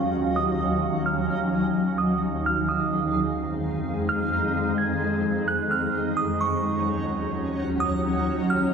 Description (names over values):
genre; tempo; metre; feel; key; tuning
hip hop; 129 BPM; 4/4; half-time; Eb dorian; A4 = 439 Hz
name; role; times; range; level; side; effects
granular cloud pad; sustained chords; 0.0-8.7 s; Eb2 to F5; -24 LUFS; equal; built-in reverb, low-pass filter
backwards swelling texture; texture; 0.0-8.7 s; Db4 to Gb5; -33 LUFS; right 1 dB; built-in reverb
glassy synth bell; melody; 0.4-8.7 s; Db6 to Ab6; -28 LUFS; right 4 dB; chorus, tremolo, low-pass filter, analog delay
room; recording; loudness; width
moderate spring reverb, RT60 2.5 s; echo-heavy mix, small room ambience; -22 LUFS; side -6 dB against mid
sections
0.0-8.7 A section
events
filter sweep 0.0-8.7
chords
0.0 Ebm7; 2.2 Fm7; 5.9 Ebm7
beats
| 0.36 0.82 1.29 1.75 | 2.22 2.69 3.15 3.62 | 4.08 4.55 5.01 5.48 | 5.94 6.41 6.87 7.34 | 7.80 8.27 8.73